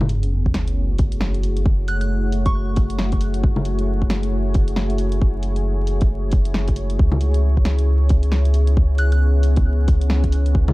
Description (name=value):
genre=future garage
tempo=135 BPM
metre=4/4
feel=swing 61% on 16ths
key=F# minor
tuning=A4 = 440 Hz
part: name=deep dark ambient pad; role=sustained chords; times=0.1-10.7 s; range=A3 to C#5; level=-27 LUFS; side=left 1 dB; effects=chorus, built-in reverb, sidechain pumping
part: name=soft dub sub bass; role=bass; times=0.0-10.7 s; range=F#1 to C#2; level=-19 LUFS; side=equal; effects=tube saturation, sidechain pumping
part: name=garage drum kit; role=drums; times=0.0-10.7 s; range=bongos, hi-hat, snare drum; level=-26 LUFS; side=left 1 dB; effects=none
part: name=sub drop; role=sound effects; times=0.0-1.7 s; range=none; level=-26 LUFS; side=equal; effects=none
part: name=electronic kick drum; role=drums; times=0.5-10.7 s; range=none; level=-18 LUFS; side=equal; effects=none
part: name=soft synth bell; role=melody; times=1.9-2.8, 9.0-9.2 s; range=C#6 to F#6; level=-32 LUFS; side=right 1 dB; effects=chorus, analog delay
room=digital ambience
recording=dark, warm production, vinyl crackle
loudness=-16 LUFS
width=side -20 dB against mid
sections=0.0-10.7 A section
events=impact 0.0-1.7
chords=0.0 F#m9; 7.0 C#m7